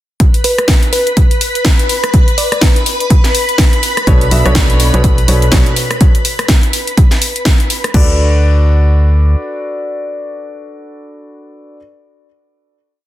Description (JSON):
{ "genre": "piano house", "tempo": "124 BPM", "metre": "4/4", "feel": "swing 59% on 16ths", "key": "D major", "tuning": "A4 = 440 Hz", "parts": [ { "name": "string machine, violins", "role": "sustained chords", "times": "0.2-8.0 s", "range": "B4 to B5", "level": "-19 LUFS", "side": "left 1 dB", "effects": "ensemble chorus, sidechain pumping" }, { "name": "electronic kick drum", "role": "drums", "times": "0.2-8.1 s", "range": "none", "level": "-10 LUFS", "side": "equal", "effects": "none" }, { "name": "house drum kit", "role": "drums", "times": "0.2-8.1 s", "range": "crash cymbal, hi-hat, rim click, snare drum", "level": "-16 LUFS", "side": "equal", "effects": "none" }, { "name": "bell-like FM electric piano", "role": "melody", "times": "0.4-2.6 s", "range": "B4 to D5", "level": "-19 LUFS", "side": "equal", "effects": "chorus, ping-pong delay" }, { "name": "warm grand piano", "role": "riff", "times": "4.1-11.8 s", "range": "B2 to E5", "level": "-18 LUFS", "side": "equal", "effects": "sidechain pumping, ping-pong delay" }, { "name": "organ-like FM bass", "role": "bass", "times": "4.1-9.4 s", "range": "B1 to D2", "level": "-10 LUFS", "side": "equal", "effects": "sidechain pumping" } ], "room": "little or no reverb", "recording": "dense, heavily limited modern master", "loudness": "-9 LUFS", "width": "side -14 dB against mid", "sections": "0.2-7.9 groove; 7.9-11.8 final chord", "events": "none", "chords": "0.2 N.C.; 3.8 Bm9; 6.0 N.C.; 7.9 D6" }